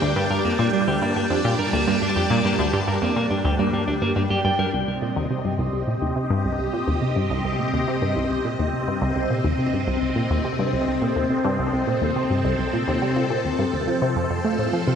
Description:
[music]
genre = ambient, sequencer-driven space music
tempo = 105 BPM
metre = 4/4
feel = straight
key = C dorian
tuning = A4 = 440 Hz
[part]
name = phased string machine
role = sustained chords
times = 0.0-15.0 s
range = C3 to A5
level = -24 LUFS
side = equal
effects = ensemble chorus, phaser
[part]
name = clean electric guitar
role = arpeggios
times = 0.0-4.7 s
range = Bb3 to G5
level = -25 LUFS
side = left 1 dB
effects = auto-pan, ping-pong delay
[part]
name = tight sequenced synth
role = riff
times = 0.0-15.0 s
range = C2 to A3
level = -23 LUFS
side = equal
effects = chorus, ping-pong delay
[part]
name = bubbling stepped-filter texture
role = texture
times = 0.0-4.7 s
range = D5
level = -34 LUFS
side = right 6 dB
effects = chorus, built-in reverb
[sound]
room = wet concert hall reverb, RT60 2.3 s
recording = none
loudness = -20 LUFS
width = side -7 dB against mid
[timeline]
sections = 0.0-4.7 A section; 4.7-15.0 B section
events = none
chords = 0.0 Gm; 4.7 Cm; 13.9 F

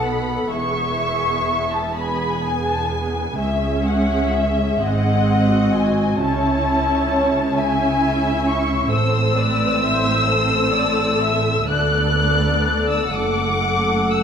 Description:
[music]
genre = classical, slow romantic movement for string orchestra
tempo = 43 BPM (dotted quarters)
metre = 6/8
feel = uneven beats, rubato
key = unclear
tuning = A4 = 439 Hz
[part]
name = muted studio violin section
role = melody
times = 0.0-14.2 s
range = E5 to F#6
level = -22 LUFS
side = left 2 dB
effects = none
[part]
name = muted studio violin section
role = second line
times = 0.0-14.2 s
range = C5 to G#5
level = -25 LUFS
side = left 3 dB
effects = none
[part]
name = muted studio viola section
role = accompaniment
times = 0.0-14.2 s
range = A3 to C5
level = -23 LUFS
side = right 1 dB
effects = none
[part]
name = muted studio cello section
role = bass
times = 0.0-14.2 s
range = C#2 to C#3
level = -24 LUFS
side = right 1 dB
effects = none
[part]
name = muted symphonic double bass section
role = bass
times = 0.0-14.2 s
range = E1 to D2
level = -25 LUFS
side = right 3 dB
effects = none
[sound]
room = wet recital hall reverb, RT60 1.5 s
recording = none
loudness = -17 LUFS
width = side -7 dB against mid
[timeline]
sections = 0.0-14.2 A section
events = none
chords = 0.0 B5; 0.5 E; 3.4 C#m; 4.8 G#7; 6.2 C#m; 8.9 Am; 11.7 D

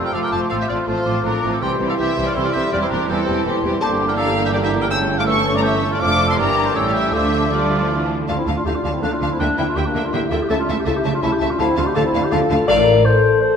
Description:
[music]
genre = quick classical-period movement for symphony orchestra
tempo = 163 BPM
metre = 3/4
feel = rubato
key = D minor from 3.8 s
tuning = A4 = 440 Hz
[part]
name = dark clarinet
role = second line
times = 0.0-13.6 s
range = D4 to D5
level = -23 LUFS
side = left 3 dB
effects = none
[part]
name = mellow hollow concert flute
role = second line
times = 0.0-8.1 s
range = A5 to E6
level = -26 LUFS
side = left 2 dB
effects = none
[part]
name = rich studio violin section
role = second line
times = 0.0-12.9 s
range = C4 to F5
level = -27 LUFS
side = left 2 dB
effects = none
[part]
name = warm oboe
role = second line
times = 0.0-8.1 s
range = C4 to G5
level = -26 LUFS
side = right 2 dB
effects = none
[part]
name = mellow bassoon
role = accompaniment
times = 0.0-8.1 s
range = C#3 to A3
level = -28 LUFS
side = right 2 dB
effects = none
[part]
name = rich studio viola section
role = accompaniment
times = 0.0-12.8 s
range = E3 to Bb3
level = -26 LUFS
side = right 3 dB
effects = none
[part]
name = warm French horn section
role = sustained chords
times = 0.0-13.6 s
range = E3 to Bb4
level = -24 LUFS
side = left 2 dB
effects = none
[part]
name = rich studio cello section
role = bass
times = 0.0-13.0 s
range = E2 to G3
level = -26 LUFS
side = right 2 dB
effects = none
[part]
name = rich studio double bass section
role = bass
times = 0.0-13.0 s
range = E1 to D2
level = -25 LUFS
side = right 3 dB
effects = none
[part]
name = rich studio violin section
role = melody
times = 0.1-12.9 s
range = A4 to E6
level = -26 LUFS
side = left 3 dB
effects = none
[sound]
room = wet scoring stage reverb, RT60 1.8 s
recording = minimal, uncompressed stereo recording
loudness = -16 LUFS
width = side -7 dB against mid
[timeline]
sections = 0.0-8.3 A section; 8.3-13.6 B section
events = none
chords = 0.0 F; 0.5 F/A; 1.6 C; 2.7 C/E; 3.8 Em7b5/G; 4.9 A7/G; 6.0 Dm/F; 6.4 Em7b5/G; 6.8 A7; 7.1 Dm; 9.4 Em7b5/D; 10.5 A/C#; 11.6 Dm; 12.7 F/A

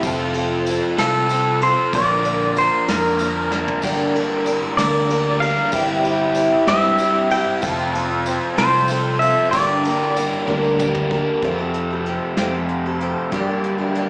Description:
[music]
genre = folk rock and heartland rock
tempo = 63 BPM (dotted quarters)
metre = 6/8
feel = straight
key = unclear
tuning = A4 = 436 Hz
[part]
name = picked twelve-string acoustic guitar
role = accompaniment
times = 0.0-14.1 s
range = G2 to Bb4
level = -22 LUFS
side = equal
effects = plate reverb, slapback echo
[part]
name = raw garage guitar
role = riff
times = 0.0-14.1 s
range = F2 to Bb4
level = -22 LUFS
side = equal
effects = overdrive, phaser, slapback echo
[part]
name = fingered electric bass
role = bass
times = 0.0-14.1 s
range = F1 to G2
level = -26 LUFS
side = equal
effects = none
[part]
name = soft brush drum kit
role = drums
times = 0.0-14.1 s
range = crash cymbal, hi-hat, kick drum, ride cymbal, snare drum, toms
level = -28 LUFS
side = equal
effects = none
[part]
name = tambourine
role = percussion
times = 0.0-11.0 s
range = none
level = -38 LUFS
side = equal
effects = none
[part]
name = pedal steel guitar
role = melody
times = 1.0-10.7 s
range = A4 to G5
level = -19 LUFS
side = equal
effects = plate reverb, slapback echo, analog delay
[sound]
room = moderate club reverb, RT60 0.5 s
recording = live gig heard through the venue's PA, club reverb, small speaker sound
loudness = -16 LUFS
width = side -33 dB against mid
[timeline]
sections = 0.0-11.4 A section; 11.4-14.1 B section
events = drum fill 3.5-3.8, 10.5-11.4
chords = 0.0 F; 1.9 Bb; 3.8 Gm; 5.7 C/G; 7.6 F; 9.5 Gm; 11.4 Fadd9; 13.3 Gm

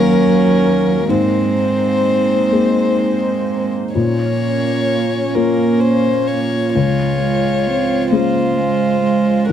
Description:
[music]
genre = neoclassical piano and strings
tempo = 43 BPM (dotted quarters)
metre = 6/8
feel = rubato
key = unclear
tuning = A4 = 440 Hz
[part]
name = rich violin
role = melody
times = 0.0-9.5 s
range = Bb4 to Db5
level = -19 LUFS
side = left 4 dB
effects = slapback echo
[part]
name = warm cello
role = second line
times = 0.0-9.5 s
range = Gb3 to C4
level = -19 LUFS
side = right 6 dB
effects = none
[part]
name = felt-muted upright piano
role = accompaniment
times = 0.0-9.5 s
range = Db2 to F5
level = -19 LUFS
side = left 5 dB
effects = none
[part]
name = rich viola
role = accompaniment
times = 0.0-9.5 s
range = C4 to Gb4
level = -23 LUFS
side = right 4 dB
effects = none
[part]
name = chorused pulse-width pad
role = sustained chords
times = 0.0-9.5 s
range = Gb3 to F5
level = -23 LUFS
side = right 4 dB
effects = none
[sound]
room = light reverb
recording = dry, close 1970s-style studio recording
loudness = -13 LUFS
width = side -9 dB against mid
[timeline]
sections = 0.0-9.5 A section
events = none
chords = 0.0 Ebmadd9; 1.1 Abadd9; 3.9 Bbm; 6.7 Db

